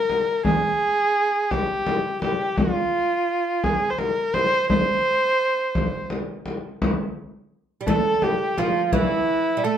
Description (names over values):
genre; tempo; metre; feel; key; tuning
Persian modal ensemble; 57 BPM (dotted quarters); 6/8; straight; C dastgah shur; A4 = 439 Hz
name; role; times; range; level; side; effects
warm kamancheh; melody; 0.0-9.8 s; E4 to C5; -21 LUFS; right 1 dB; none
frame drum; percussion; 0.1-9.1 s; none; -24 LUFS; left 1 dB; none
oud; second line; 7.8-9.8 s; E3 to A3; -25 LUFS; right 7 dB; none
room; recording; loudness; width
moderate studio reverb, RT60 0.6 s; band playing live in one room; -20 LUFS; side -9 dB against mid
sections
0.0-6.8 A section; 6.8-9.8 B section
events
none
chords
none